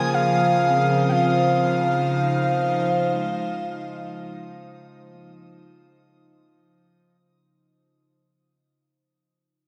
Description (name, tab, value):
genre	ambient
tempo	61 BPM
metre	4/4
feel	straight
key	unclear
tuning	A4 = 441 Hz
part	breathy flute-like synth lead	melody	0.0-6.1 s	F5 to Ab5	-25 LUFS	equal	analog chorus, diffuse ambient delay
part	evolving wavetable pad	sustained chords	0.0-7.1 s	Db3 to C5	-27 LUFS	equal	phaser, built-in reverb
part	electric guitar at the edge of break-up	arpeggios	0.0-8.7 s	Ab3 to Eb5	-37 LUFS	equal	ensemble chorus, diffuse ambient delay
part	hand-pumped harmonium	drone	0.0-7.2 s	F3	-32 LUFS	equal	none
part	drifting glass-harmonics texture	texture	0.0-7.1 s	Eb6	-39 LUFS	equal	chorus, built-in reverb
room	wet cathedral reverb, RT60 7.0 s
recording	in a vast, echoing space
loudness	-21 LUFS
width	mono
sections	0.0-7.1 A section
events	fade-out on clean electric guitar 0.0-7.1; fade-out 0.0-7.1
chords	0.0 Dbmaj7